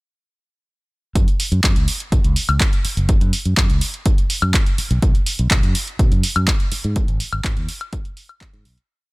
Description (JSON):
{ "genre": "filtered disco house", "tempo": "124 BPM", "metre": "4/4", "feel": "straight", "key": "unclear", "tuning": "A4 = 440 Hz", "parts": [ { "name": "fingered electric bass", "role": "bass", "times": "1.2-8.8 s", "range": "F#1 to B2", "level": "-20 LUFS", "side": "equal", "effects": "sidechain pumping, low-pass filter" }, { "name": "electronic kick drum", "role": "drums", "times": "1.2-8.5 s", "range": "none", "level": "-17 LUFS", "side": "equal", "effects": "none" }, { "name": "punchy analog drum machine", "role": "drums", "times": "1.2-8.9 s", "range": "handclaps, hi-hat, woodblock", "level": "-22 LUFS", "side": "equal", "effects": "none" } ], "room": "little or no reverb", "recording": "none", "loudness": "-16 LUFS", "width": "side -24 dB against mid", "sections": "1.2-8.9 groove", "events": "fade-out 6.3-8.9", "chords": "none" }